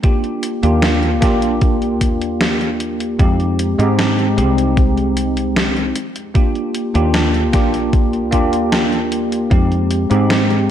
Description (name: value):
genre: vaporwave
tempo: 76 BPM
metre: 4/4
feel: straight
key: unclear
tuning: A4 = 440 Hz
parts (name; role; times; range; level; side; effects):
- bell-like tine electric piano; accompaniment; 0.0-10.7 s; Ab3 to G4; -17 LUFS; equal; medium stereo tremolo, analog chorus, analog delay
- electronic kick drum; drums; 0.0-9.7 s; none; -14 LUFS; equal; overdrive
- gated 80s digital drum machine; drums; 0.0-10.7 s; hi-hat, snare drum; -20 LUFS; equal; gated reverb, gated reverb snare, overdrive
- woody fretless electric bass; bass; 0.6-10.7 s; Bb1 to Ab2; -20 LUFS; equal; none
room: light reverb, digital ambience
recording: none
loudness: -14 LUFS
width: side -10 dB against mid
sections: 0.0-10.7 A section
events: none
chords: 0.0 Ebmaj9; 3.2 Fm9; 6.0 Ebmaj9; 9.5 Fm9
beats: | 0.04 0.83 1.62 2.41 | 3.19 3.98 4.77 5.56 | 6.35 7.14 7.93 8.72 | 9.51 10.30